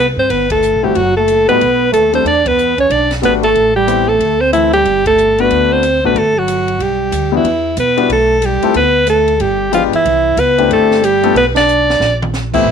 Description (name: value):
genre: jazz, small-group swing and bop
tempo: 184 BPM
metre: 4/4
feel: swing 62% on 8ths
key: G major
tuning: A4 = 440 Hz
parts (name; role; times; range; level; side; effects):
- clear alto saxophone; melody; 0.0-12.7 s; E4 to D5; -12 LUFS; left 1 dB; none
- breathy trombone; second line; 0.0-12.7 s; E3 to D4; -18 LUFS; right 12 dB; none
- upright bass; bass; 0.0-12.7 s; F#1 to B2; -21 LUFS; right 1 dB; none
- compact cocktail drum kit; drums; 0.3-12.6 s; crash cymbal, hi-hat, kick drum, ride cymbal, snare drum, toms; -27 LUFS; left 1 dB; none
- warm concert grand piano; accompaniment; 0.8-12.6 s; E2 to A4; -16 LUFS; left 14 dB; none
room: light reverb, small room ambience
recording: 1960s-style stereo with parts hard left and right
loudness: -10 LUFS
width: side -7 dB against mid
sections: 0.0-7.5 A section; 7.5-12.7 B section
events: band accent 0.5, 2.4, 5.0, 11.5; drum fill 11.7-12.3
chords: 0.0 Cmaj7(no3); 0.9 F#madd11; 1.6 B7b13; 2.3 Em11; 3.6 Am7; 4.2 Dsus2; 4.9 Gmaj9; 6.8 Bm; 7.5 Em; 8.8 D5; 9.4 G7b9; 10.1 C69; 11.4 Bm; 12.0 Bbsus2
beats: 0.30 0.62 | 0.95 1.27 1.60 1.93 | 2.25 2.58 2.90 3.23 | 3.55 3.88 4.20 4.53 | 4.85 5.18 5.50 5.83 | 6.15 6.48 6.80 7.13 | 7.45 7.78 8.10 8.43 | 8.75 9.08 9.40 9.73 | 10.05 10.38 10.70 11.03 | 11.35 11.68 12.00 12.33 | 12.65